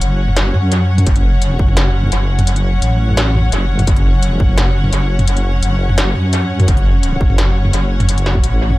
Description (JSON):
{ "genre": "half-time drum and bass", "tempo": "171 BPM", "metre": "4/4", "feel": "half-time", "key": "F# minor", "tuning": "A4 = 440 Hz", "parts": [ { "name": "rich symphonic string section", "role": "sustained chords", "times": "0.0-8.8 s", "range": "F#3 to F#5", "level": "-22 LUFS", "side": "left 1 dB", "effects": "sidechain pumping" }, { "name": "deep soft wobble bass", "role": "bass", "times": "0.0-8.8 s", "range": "F#1 to F#2", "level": "-14 LUFS", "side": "equal", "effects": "chorus" }, { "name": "industrial drum kit", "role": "drums", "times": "0.0-8.8 s", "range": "hi-hat, snare drum, toms", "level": "-18 LUFS", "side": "equal", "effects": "dub echo" }, { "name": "electronic kick drum", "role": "drums", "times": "1.1-1.7, 3.9-4.5, 6.7-8.4 s", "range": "none", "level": "-15 LUFS", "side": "equal", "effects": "none" } ], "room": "little or no reverb", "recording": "echo-heavy mix", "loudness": "-12 LUFS", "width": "side -18 dB against mid", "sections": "0.0-8.8 A section", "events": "none", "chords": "0.0 F#5", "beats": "0.01 0.37 0.72 | 1.07 1.42 1.77 2.12 | 2.47 2.82 3.17 3.52 | 3.87 4.22 4.58 4.93 | 5.28 5.63 5.98 6.33 | 6.68 7.03 7.38 7.73 | 8.09 8.44" }